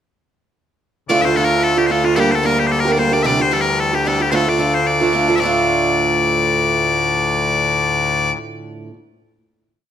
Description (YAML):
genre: celtic folk, Celtic reel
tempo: 223 BPM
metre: 4/4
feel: swing 55% on 8ths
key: D minor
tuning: A4 = 438 Hz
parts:
  - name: loud bright bagpipes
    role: melody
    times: 1.1-8.3 s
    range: D2 to E5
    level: -16 LUFS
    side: left 3 dB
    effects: none
  - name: picked acoustic archtop guitar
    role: accompaniment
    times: 1.1-9.0 s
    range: D2 to G4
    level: -18 LUFS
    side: right 3 dB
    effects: none
room: moderate recital hall reverb, RT60 1.4 s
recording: close, detailed microphones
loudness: -14 LUFS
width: side -9 dB against mid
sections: 1.1-5.4 A section; 5.4-7.6 final chord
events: none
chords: 1.1 Dm; 2.2 Gm; 3.2 Cadd9; 4.3 Dm